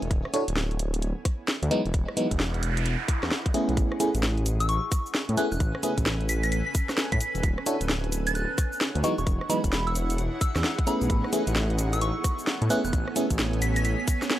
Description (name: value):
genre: UK garage, two-step garage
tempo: 131 BPM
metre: 4/4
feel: swing 63% on 16ths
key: A major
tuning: A4 = 440 Hz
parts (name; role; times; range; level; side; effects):
- dark detuned saw bass; bass; 0.0-14.0 s; D1 to A2; -27 LUFS; equal; none
- garage drum kit; drums; 0.0-14.4 s; cabasa, hi-hat, rim click, snare drum; -29 LUFS; equal; overdrive
- granular cloud pad; texture; 0.0-14.4 s; B3 to G#5; -36 LUFS; right 2 dB; built-in reverb, sidechain pumping
- electronic kick drum; drums; 0.1-14.2 s; none; -26 LUFS; equal; overdrive
- FM electric piano; stabs; 0.3-13.3 s; E3 to C#5; -28 LUFS; equal; chorus, phaser, tape echo
- noise sweep; sound effects; 2.2-3.8 s; none; -35 LUFS; right 4 dB; none
- soft synth bell; melody; 4.6-14.0 s; B5 to B6; -32 LUFS; equal; chorus, phaser, tape echo
room: little or no reverb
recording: dry, gritty hardware recording, transformer saturation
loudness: -24 LUFS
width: side -13 dB against mid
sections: 0.0-14.4 A section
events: fade-in on ambient pad 0.0-14.4; noise sweep 2.2-3.8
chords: 0.1 Dadd9; 1.7 Emaj9; 3.8 Amaj9; 7.4 Dmaj9; 9.0 Emaj9; 11.1 Amaj9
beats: | 0.11 0.56 1.02 1.48 | 1.94 2.40 2.85 3.31 | 3.77 4.23 4.69 5.14 | 5.60 6.06 6.52 6.98 | 7.43 7.89 8.35 8.81 | 9.27 9.72 10.18 10.64 | 11.10 11.56 12.02 12.47 | 12.93 13.39 13.85 14.30